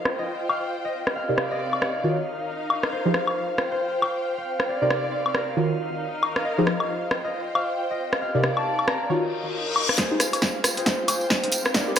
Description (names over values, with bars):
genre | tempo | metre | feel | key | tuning
UK garage, two-step garage | 136 BPM | 4/4 | swing 60% on 16ths | F minor | A4 = 440 Hz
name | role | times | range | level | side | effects
concert harp | melody | 0.0-12.0 s | Eb4 to Bb5 | -29 LUFS | equal | vintage 12-bit sampler grit, digital delay
airy breathy pad | sustained chords | 0.0-12.0 s | F5 | -35 LUFS | right 1 dB | chorus, sidechain pumping
dark studio string section | texture | 0.0-12.0 s | C4 to G5 | -32 LUFS | left 1 dB | sidechain pumping
punchy analog drum machine | drums | 0.1-12.0 s | hi-hat, rim click, snare drum, woodblock | -25 LUFS | left 1 dB | high-pass filter on snare, low-pass filter on snare, high-pass filter on perc, low-pass filter on perc, high-pass filter on hats, low-pass filter on hats, gated reverb
deep mellow chord stab | stabs | 1.3-12.0 s | C3 to D5 | -26 LUFS | equal | chorus, phaser, digital delay
reverse cymbal and riser | sound effects | 9.3-12.0 s | none | -31 LUFS | left 4 dB | none
electronic kick drum | drums | 10.0-11.9 s | none | -30 LUFS | right 1 dB | high-pass filter on kick, high-pass filter on room
tambourine | percussion | 10.0-12.0 s | none | -30 LUFS | right 3 dB | none
room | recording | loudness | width
moderate lush hall reverb, RT60 2.2 s | bright 1980s-style digital production | -22 LUFS | side -9 dB against mid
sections
0.0-10.0 A section; 10.0-12.0 B section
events
reverse cymbal 9.3-10.0; build-up 10.0-12.0; drum fill 10.0-12.0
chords
0.0 F7sus2; 0.9 Cm9; 2.0 Ebm9; 2.9 F7sus2; 4.5 Cm9; 5.6 Ebm9; 6.5 F7sus2; 8.0 Cm9; 9.1 Ebm9; 10.0 Fm9